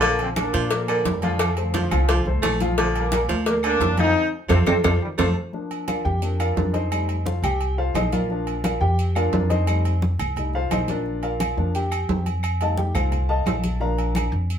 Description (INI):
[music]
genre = latin, salsa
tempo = 174 BPM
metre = 4/4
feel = straight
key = Bb major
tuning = A4 = 440 Hz
[part]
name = bright trombone section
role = melody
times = 0.0-5.4 s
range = C3 to Eb4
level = -26 LUFS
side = left 2 dB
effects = none
[part]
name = clear baritone saxophone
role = second line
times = 0.0-5.4 s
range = D3 to A3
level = -27 LUFS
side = right 1 dB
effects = none
[part]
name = warm upright piano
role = accompaniment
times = 0.0-14.3 s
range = F3 to Bb5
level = -26 LUFS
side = left 1 dB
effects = none
[part]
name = upright bass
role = bass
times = 0.0-14.6 s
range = Bb1 to Bb2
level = -24 LUFS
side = equal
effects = none
[part]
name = congas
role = percussion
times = 0.0-14.6 s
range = none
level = -29 LUFS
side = left 1 dB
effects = none
[part]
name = cowbell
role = percussion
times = 0.0-5.3 s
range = none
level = -27 LUFS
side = left 4 dB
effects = none
[part]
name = agogo bells and timbales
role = percussion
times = 0.2-14.6 s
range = none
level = -28 LUFS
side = right 5 dB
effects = none
[part]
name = claves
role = percussion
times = 0.4-14.3 s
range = none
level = -34 LUFS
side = left 1 dB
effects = none
[sound]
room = wet studio reverb, RT60 0.7 s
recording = band playing live in one room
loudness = -20 LUFS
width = side -8 dB against mid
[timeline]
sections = 0.0-5.5 A section; 5.5-14.6 B section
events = drum fill 4.2-5.5; band accent 4.2-5.5; upright piano solo 5.5-14.6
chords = 0.0 Bb; 1.4 F; 2.8 Bb; 4.2 F; 5.5 Bb; 12.4 F7; 13.8 Bb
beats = | 0.02 0.36 0.71 1.05 | 1.40 1.74 2.09 2.43 | 2.78 3.12 3.46 3.81 | 4.15 4.50 4.84 5.19 | 5.53 5.88 6.22 6.57 | 6.91 7.26 7.60 7.95 | 8.29 8.64 8.98 9.33 | 9.67 10.02 10.36 10.71 | 11.05 11.40 11.74 12.09 | 12.43 12.78 13.12 13.47 | 13.81 14.16 14.50